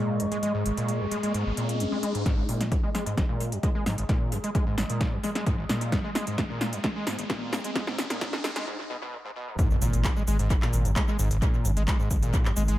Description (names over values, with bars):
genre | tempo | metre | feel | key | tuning
driving peak-time techno | 131 BPM | 4/4 | straight | unclear | A4 = 441 Hz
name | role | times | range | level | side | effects
overdriven acid bass | riff | 0.0-12.8 s | G#1 to G#3 | -30 LUFS | equal | distortion, analog chorus, sidechain pumping, analog delay
analog drone | drone | 0.3-2.3, 10.8-12.8 s | G#2 to G#3 | -43 LUFS | equal | none
riser and impact | sound effects | 0.2-11.4 s | none | -36 LUFS | left 1 dB | none
warbly tape-like pad | texture | 0.0-8.7 s | G#3 to D#6 | -34 LUFS | equal | chorus, built-in reverb, sidechain pumping
techno drum kit | drums | 0.2-12.8 s | handclaps, hi-hat, shaker, snare drum | -32 LUFS | equal | sidechain pumping on hats, sidechain pumping on perc, tape echo
electronic kick drum | drums | 2.3-12.4 s | none | -27 LUFS | equal | none
saturated sub bass | bass | 9.8-12.8 s | G#1 | -25 LUFS | equal | tube saturation, sidechain pumping, low-pass filter
room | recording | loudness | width
light reverb | echo-heavy mix, high-pass filter | -24 LUFS | side -14 dB against mid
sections
0.0-2.3 A section; 2.3-9.6 B section; 9.6-12.8 C section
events
riser 0.2-2.3, 2.3-8.7; build-up 2.3-9.6; drum fill 2.3-8.7; filter sweep on acid bass 2.3-9.6; filter sweep 2.3-9.6; break 8.7-9.6; drop 9.6-12.8; impact 9.6-11.4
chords
0.0 G#5; 9.6 G#sus2